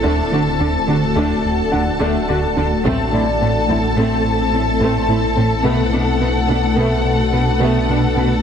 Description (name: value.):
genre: cinematic, hybrid orchestral and electronic film score.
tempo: 107 BPM.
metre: 5/4.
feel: straight.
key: A dorian.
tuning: A4 = 443 Hz.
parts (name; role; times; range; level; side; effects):
warm symphonic violin section; second line; 0.0-8.4 s; A4 to A5; -22 LUFS; left 4 dB; none.
warm symphonic viola section; accompaniment; 0.0-8.3 s; A3 to F#4; -22 LUFS; equal; none.
granular cloud pad; sustained chords; 0.0-8.4 s; A3 to B4; -21 LUFS; left 1 dB; built-in reverb.
smooth synth bass; riff; 0.0-8.3 s; D2 to B3; -22 LUFS; right 2 dB; none.
rich symphonic cello section; bass; 0.0-8.3 s; A2 to D3; -24 LUFS; right 2 dB; none.
sub bass with octave; bass; 0.0-8.4 s; D1 to B1; -24 LUFS; equal; none.
clear grand piano; texture; 0.0-5.7 s; D5 to F#5; -28 LUFS; right 1 dB; ping-pong delay.
taiko ensemble; drums; 2.9-4.0 s; none; -25 LUFS; equal; none.
room: wet scoring stage reverb, RT60 1.4 s.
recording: heavily compressed radio sound, multiband compression.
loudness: -14 LUFS.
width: side -8 dB against mid.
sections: 0.0-8.4 A section.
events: none.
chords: 0.0 D; 2.8 Am; 5.7 Bm7.